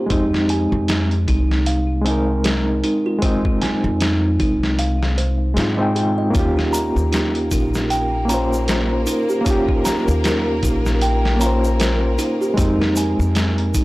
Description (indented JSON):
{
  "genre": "trip hop",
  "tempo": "77 BPM",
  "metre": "4/4",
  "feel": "swing 58% on 16ths",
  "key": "F minor",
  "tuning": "A4 = 440 Hz",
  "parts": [
    { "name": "overdriven reed electric piano", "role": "accompaniment", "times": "0.0-13.8 s", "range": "Ab3 to G5", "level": "-21 LUFS", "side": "equal", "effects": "tremolo, tape echo" },
    { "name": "music box", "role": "arpeggios", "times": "0.0-13.8 s", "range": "Eb4 to Bb5", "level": "-24 LUFS", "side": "right 2 dB", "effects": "vintage 12-bit sampler grit, tape echo" },
    { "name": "upright bass", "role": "bass", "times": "0.1-13.8 s", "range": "Bb1 to Ab2", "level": "-20 LUFS", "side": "equal", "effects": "none" },
    { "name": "trip hop sampler-style drum kit", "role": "drums", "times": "0.1-13.8 s", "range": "hi-hat, kick drum, snare drum", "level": "-22 LUFS", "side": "equal", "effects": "none" },
    { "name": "warm symphonic violin section", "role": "sustained chords", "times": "6.3-13.8 s", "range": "Bb3 to Bb4", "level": "-28 LUFS", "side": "left 1 dB", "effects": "none" },
    { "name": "egg shaker", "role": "percussion", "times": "6.3-13.8 s", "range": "none", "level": "-33 LUFS", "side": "right 1 dB", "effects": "none" }
  ],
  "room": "light reverb, small room ambience",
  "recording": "dry, gritty hardware recording, transformer saturation",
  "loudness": "-16 LUFS",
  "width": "side -19 dB against mid",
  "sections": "0.0-13.8 A section",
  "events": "none",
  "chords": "0.1 Fm7; 6.3 Eb7; 12.6 Fm7",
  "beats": "| 0.11 0.89 1.67 2.45 | 3.23 4.01 4.79 5.57 | 6.34 7.12 7.90 8.68 | 9.46 10.24 11.02 11.80 | 12.58 13.36"
}